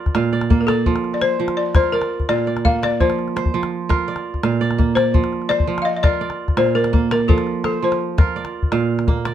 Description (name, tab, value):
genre	west african traditional, West African string and xylophone music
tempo	112 BPM (dotted quarters)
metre	12/8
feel	straight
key	unclear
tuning	A4 = 440 Hz
part	kora	arpeggios	0.0-9.3 s	Bb2 to F5	-20 LUFS	right 5 dB	none
part	calabash	percussion	0.1-9.3 s	none	-18 LUFS	left 1 dB	none
part	balafon	melody	0.6-8.3 s	A4 to F5	-20 LUFS	left 5 dB	none
room	light reverb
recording	none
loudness	-16 LUFS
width	side -10 dB against mid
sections	0.0-9.3 A section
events	none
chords	0.0 Bb; 0.9 F5; 1.9 Bb; 3.0 F5; 4.1 Bb; 5.1 F5; 6.2 Bb; 7.3 F; 8.4 Bb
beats	0.32 | 0.86 1.39 1.93 2.46 | 3.00 3.54 4.07 4.61 | 5.14 5.68 6.22 6.75 | 7.29 7.83 8.36 8.90